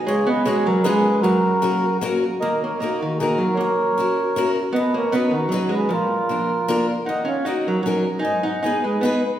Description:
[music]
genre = musette waltz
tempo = 155 BPM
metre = 3/4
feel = straight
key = Eb minor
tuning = A4 = 440 Hz
[part]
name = mellow accordion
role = melody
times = 0.1-9.2 s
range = Eb4 to Ab5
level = -22 LUFS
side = right 1 dB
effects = none
[part]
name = archtop guitar, miked and amplified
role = second line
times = 0.1-9.2 s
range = Eb3 to Eb4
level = -23 LUFS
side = right 2 dB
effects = none
[part]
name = picked old ladder-braced acoustic guitar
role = accompaniment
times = 0.1-9.2 s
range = F#2 to B4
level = -24 LUFS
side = left 2 dB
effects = none
[sound]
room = wet recital hall reverb, RT60 1.9 s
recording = heard from further back in the room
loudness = -18 LUFS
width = side -11 dB against mid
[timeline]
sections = 0.0-2.4 A section; 2.4-9.4 B section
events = none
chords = 0.1 C#7sus4; 0.9 C#7; 1.2 F#; 2.4 Ebm; 3.6 Gb7; 4.7 Badd9; 5.9 Bb; 7.1 Ebm7; 8.3 Abm

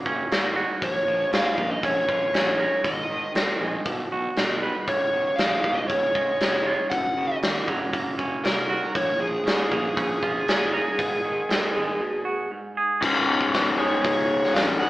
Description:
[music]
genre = quiet-loud alternative rock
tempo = 118 BPM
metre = 4/4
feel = straight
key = Db major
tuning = A4 = 437 Hz
[part]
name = twangy electric guitar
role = arpeggios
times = 0.0-14.9 s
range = Db2 to Cb5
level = -29 LUFS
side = right 2 dB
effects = none
[part]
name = fuzz fingered electric bass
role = bass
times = 0.1-14.9 s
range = Db1 to Ab2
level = -35 LUFS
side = equal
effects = overdrive
[part]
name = big rock drum kit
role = drums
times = 0.1-14.7 s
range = crash cymbal, hi-hat, kick drum, snare drum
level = -26 LUFS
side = equal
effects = none
[part]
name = smooth overdriven lead guitar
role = melody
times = 0.8-14.9 s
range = Ab4 to Gb5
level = -25 LUFS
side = equal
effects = none
[part]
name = crunchy overdriven guitar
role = riff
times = 13.0-14.9 s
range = Db2 to Db3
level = -22 LUFS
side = left 3 dB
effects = none
[sound]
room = moderate large studio reverb, RT60 1.4 s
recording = band playing live in one room, AM radio sound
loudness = -21 LUFS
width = side -16 dB against mid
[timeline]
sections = 0.0-13.0 A section; 13.0-14.9 B section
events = break 12.0-13.0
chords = 0.0 Gb; 0.8 Bbm; 2.8 Ab; 3.9 Cb; 4.9 Db; 6.9 Gb; 8.9 Bbm7; 11.0 Ab; 12.0 Cb5; 12.5 N.C.; 13.0 Db5

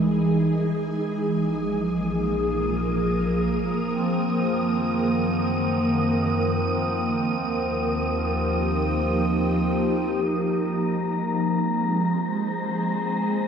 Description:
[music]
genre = ambient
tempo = free time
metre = none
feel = none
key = F minor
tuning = A4 = 439 Hz
[part]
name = ethereal airy pad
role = sustained chords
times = 0.0-13.5 s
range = Eb3 to Gb5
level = -23 LUFS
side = equal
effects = ensemble chorus, built-in reverb, phaser
[part]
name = deep rumbling drone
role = bass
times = 0.0-10.1 s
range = Bb1 to Gb2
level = -32 LUFS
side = equal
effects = built-in reverb
[part]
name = wind-like tuned noise texture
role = texture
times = 0.1-13.5 s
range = Bb5 to Eb6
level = -31 LUFS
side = left 1 dB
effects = built-in reverb
[part]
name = pedal harmonium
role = drone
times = 3.9-10.2 s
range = F3 to C4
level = -30 LUFS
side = left 1 dB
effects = stereo widening
[sound]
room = wet cathedral reverb, RT60 5.0 s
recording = in a vast, echoing space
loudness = -22 LUFS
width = side -7 dB against mid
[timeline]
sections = 0.0-10.1 A section; 10.1-13.5 B section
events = fade-in on synth drone 0.0-10.1; fade-in on synth texture 0.0-10.1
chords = 0.0 Dbmadd9; 0.8 Bb5; 3.9 Gb6; 7.0 Ebadd9; 10.1 Fm

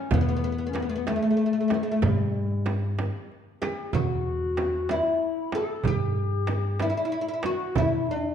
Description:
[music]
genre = Arabic maqam ensemble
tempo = 63 BPM (dotted quarters)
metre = 6/8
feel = straight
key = E maqam rast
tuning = A4 = 438 Hz
[part]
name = oud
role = melody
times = 0.0-8.3 s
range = G#3-50c to A4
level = -28 LUFS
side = left 1 dB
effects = none
[part]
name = breathy clarinet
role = second line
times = 0.0-8.3 s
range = G#3-48c to A4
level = -31 LUFS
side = left 6 dB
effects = slapback echo
[part]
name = upright bass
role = bass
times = 0.1-8.3 s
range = E2 to G#2-50c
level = -28 LUFS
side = equal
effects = none
[part]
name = darbuka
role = percussion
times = 0.1-8.2 s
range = none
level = -32 LUFS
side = right 4 dB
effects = none
[part]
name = frame drum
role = percussion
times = 0.1-7.9 s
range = none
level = -32 LUFS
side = right 5 dB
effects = none
[sound]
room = moderate recital hall reverb, RT60 1.5 s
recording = dark, warm production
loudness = -24 LUFS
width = side -8 dB against mid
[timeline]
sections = 0.0-8.3 A section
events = none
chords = none

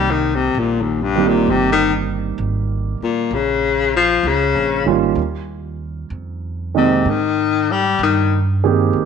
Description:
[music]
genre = jazz ballad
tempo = 65 BPM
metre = 4/4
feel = swing 67% on 8ths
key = unclear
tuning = A4 = 437 Hz
[part]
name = clear baritone saxophone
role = melody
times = 0.0-8.4 s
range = Eb2 to G3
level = -16 LUFS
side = left 7 dB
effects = none
[part]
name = warm grand piano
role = accompaniment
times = 0.0-9.1 s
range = Eb3 to Ab4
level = -20 LUFS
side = right 11 dB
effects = none
[part]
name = upright bass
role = bass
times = 0.0-9.1 s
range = G1 to Ab2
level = -23 LUFS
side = right 2 dB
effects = none
[sound]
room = moderate echo chamber reverb, RT60 1.3 s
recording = 1960s-style stereo with parts hard left and right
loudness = -15 LUFS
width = side -6 dB against mid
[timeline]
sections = 0.0-9.1 A section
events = baritone saxophone solo 0.0-9.1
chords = 0.0 Cm7; 3.3 Bbm7; 5.2 Ebsus2; 7.1 Abmaj9

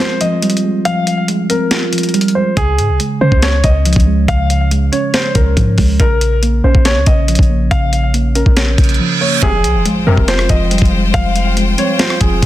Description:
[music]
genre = hip hop, trap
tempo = 140 BPM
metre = 4/4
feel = half-time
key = F minor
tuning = A4 = 440 Hz
[part]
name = dark concert grand piano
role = melody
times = 0.0-12.5 s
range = Ab4 to F5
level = -18 LUFS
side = left 1 dB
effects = digital delay
[part]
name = muted felt-like synth keys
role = accompaniment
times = 0.0-12.5 s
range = Db3 to Db5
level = -17 LUFS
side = right 2 dB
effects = chorus
[part]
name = boom bap sampler-style drum kit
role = drums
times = 0.0-12.5 s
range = hi-hat, kick drum, rim click, snare drum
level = -14 LUFS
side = equal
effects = vintage 12-bit sampler grit
[part]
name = clean 808-style bass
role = bass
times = 2.6-12.5 s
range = F1 to Db3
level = -14 LUFS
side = equal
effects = none
[part]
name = reverse cymbal and impact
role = sound effects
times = 8.7-11.1 s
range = none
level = -20 LUFS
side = right 5 dB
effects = none
[part]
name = bright studio string section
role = sustained chords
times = 9.4-12.5 s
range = F3 to G5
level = -21 LUFS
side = left 3 dB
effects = none
[part]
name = dark brass ensemble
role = stabs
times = 9.4-10.2 s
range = Ab1 to C3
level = -24 LUFS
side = left 5 dB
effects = none
[sound]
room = studio reverb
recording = dense, heavily limited modern master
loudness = -11 LUFS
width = side -14 dB against mid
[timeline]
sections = 0.0-9.4 A section; 9.4-12.5 B section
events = break 0.0-2.6; kick muted 0.9-2.6; reverse cymbal 8.7-9.4; drums muted 9.0-9.4; impact 9.4-11.1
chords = 0.0 Fmadd9; 2.6 Db; 6.0 Bbm; 9.4 Fmadd9

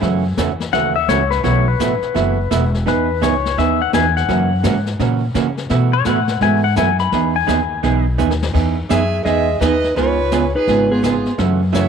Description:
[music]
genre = country, western swing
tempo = 169 BPM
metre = 4/4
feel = swing 64% on 8ths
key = E major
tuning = A4 = 440 Hz
[part]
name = vintage hollow-body jazz guitar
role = accompaniment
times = 0.0-11.9 s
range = B2 to G#4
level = -20 LUFS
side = right 11 dB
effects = none
[part]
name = upright bass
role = bass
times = 0.0-11.9 s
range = E1 to C#3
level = -19 LUFS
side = left 1 dB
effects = none
[part]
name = jazz brush drum kit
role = drums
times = 0.0-11.9 s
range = brushed snare drum, crash cymbal, hi-hat, kick drum, snare drum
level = -26 LUFS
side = left 6 dB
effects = none
[part]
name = pedal steel guitar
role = second line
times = 0.7-8.0 s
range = B4 to B5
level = -19 LUFS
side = left 11 dB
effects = none
[part]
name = clean lap steel guitar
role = melody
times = 8.9-11.9 s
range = B3 to E5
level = -18 LUFS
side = equal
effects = tape echo
[part]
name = clear fiddle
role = second line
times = 8.9-11.9 s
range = E#4 to G#5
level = -25 LUFS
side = right 10 dB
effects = none
[sound]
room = moderate spring reverb, RT60 2.5 s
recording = 1960s-style stereo with parts hard left and right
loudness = -14 LUFS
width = side -7 dB against mid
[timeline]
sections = 0.0-8.5 A section; 8.5-11.9 B section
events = pedal steel guitar solo 0.0-8.5; drum fill 8.2-8.5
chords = 0.0 F#m7; 1.4 B7sus4; 2.9 Emaj7; 4.3 F#7; 5.7 B7sus4; 7.1 Emaj7; 10.0 C#7

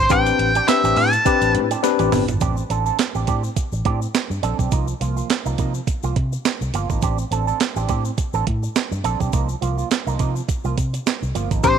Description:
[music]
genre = early-eighties boogie funk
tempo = 104 BPM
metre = 4/4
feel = swing 56% on 16ths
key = A minor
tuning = A4 = 439 Hz
[part]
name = octave-fuzz lead guitar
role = melody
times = 0.0-1.5, 11.6-11.8 s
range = C5 to A5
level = -18 LUFS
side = equal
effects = distortion
[part]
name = vintage muted fingered electric bass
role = bass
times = 0.0-11.8 s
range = G1 to C3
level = -23 LUFS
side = equal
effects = none
[part]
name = barky tine electric piano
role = accompaniment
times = 0.1-2.2, 11.6-11.8 s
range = C4 to C5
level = -20 LUFS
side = left 15 dB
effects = overdrive
[part]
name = electric guitar with an envelope filter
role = riff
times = 0.1-11.8 s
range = F3 to A4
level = -26 LUFS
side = right 13 dB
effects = analog chorus
[part]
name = clean 12-bit digital drum machine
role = drums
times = 0.1-11.8 s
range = handclaps, hi-hat, kick drum, snare drum, toms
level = -22 LUFS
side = right 5 dB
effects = none
[part]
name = egg shaker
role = percussion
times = 0.1-11.8 s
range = none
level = -37 LUFS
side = left 17 dB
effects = none
[sound]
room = light reverb, digital ambience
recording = 1960s-style stereo with parts hard left and right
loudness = -18 LUFS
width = side -8 dB against mid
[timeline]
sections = 0.0-2.4 A section; 2.4-11.6 B section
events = drum fill 1.8-2.4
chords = 0.0 Am11; 4.7 Cm7; 7.0 Am11; 9.3 Cm7

